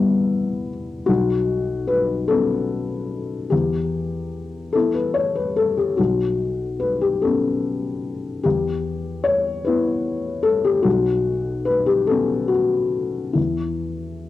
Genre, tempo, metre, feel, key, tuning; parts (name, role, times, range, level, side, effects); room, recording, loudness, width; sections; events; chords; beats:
neoclassical minimalist piano; 49 BPM (dotted quarters); 6/8; rubato; A4 = 441 Hz
felt-muted upright piano; solo; 0.0-14.3 s; B1 to C#5; -19 LUFS; left 3 dB; cassette tape
light reverb, small room ambience; home recording on cassette; -19 LUFS; side -14 dB against mid
0.0-14.3 A section
0.0 Em; 1.1 Bsus2; 3.5 Em; 6.0 Bsus2; 8.4 Em; 10.9 Bsus2; 13.4 N.C.
| 1.08 2.29 | 3.52 4.74 | 5.98 7.22 | 8.45 9.66 | 10.85 12.08 | 13.36